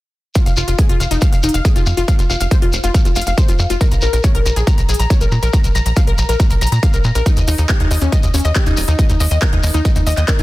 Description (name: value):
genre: uplifting trance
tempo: 139 BPM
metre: 4/4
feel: straight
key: F minor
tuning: A4 = 440 Hz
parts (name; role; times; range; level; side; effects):
- shekere; percussion; 0.3-10.4 s; none; -26 LUFS; left 2 dB; none
- wide unison pluck; arpeggios; 0.4-10.4 s; Db4 to Bb5; -21 LUFS; left 3 dB; sidechain pumping, digital delay
- big-room dance drum kit; drums; 0.4-10.4 s; handclaps, hi-hat; -26 LUFS; equal; sidechain pumping on hats
- electronic kick drum; drums; 0.4-10.4 s; none; -14 LUFS; equal; none
- tight sequencer bass; bass; 0.5-10.4 s; Eb1 to Bb2; -17 LUFS; equal; sidechain pumping
room: little or no reverb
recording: dense, heavily limited modern master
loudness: -12 LUFS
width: side -18 dB against mid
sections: 0.4-10.4 A section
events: none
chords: none